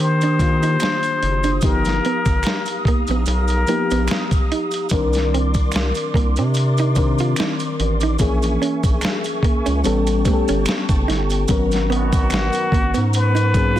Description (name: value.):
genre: R&B, neo-soul.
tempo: 73 BPM.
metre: 4/4.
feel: swing 55% on 16ths.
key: unclear.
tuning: A4 = 443 Hz.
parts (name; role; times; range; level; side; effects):
trumpet with plunger mute; melody; 0.0-4.5, 11.9-13.8 s; Gb4 to C5; -22 LUFS; left 3 dB; none.
mellow FM electric piano; accompaniment; 0.0-13.8 s; Eb3 to Bb4; -23 LUFS; left 3 dB; chorus.
mellow tonewheel organ; sustained chords; 0.0-13.8 s; B3 to Eb6; -28 LUFS; right 1 dB; fast rotary speaker, chorus vibrato.
round analog bass; bass; 0.0-13.8 s; Gb1 to Eb3; -20 LUFS; equal; none.
dusty soul sampler-style drum kit; drums; 0.0-13.8 s; hi-hat, kick drum, snare drum; -21 LUFS; equal; none.
hollow-body jazz guitar; second line; 0.2-13.8 s; A3 to F4; -25 LUFS; right 7 dB; none.
maracas and finger snaps; percussion; 0.2-13.8 s; none; -33 LUFS; right 5 dB; none.
bright trombone section; stabs; 11.9-12.7 s; Gb2 to Cb4; -29 LUFS; right 4 dB; none.
room: small room ambience.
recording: dense, heavily limited modern master.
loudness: -16 LUFS.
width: side -12 dB against mid.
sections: 0.0-13.8 A section.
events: none.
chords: 0.0 Ebmaj7; 1.6 G7alt; 4.9 Cm9; 8.2 Bbm7b5; 9.8 A9; 11.5 Abm11.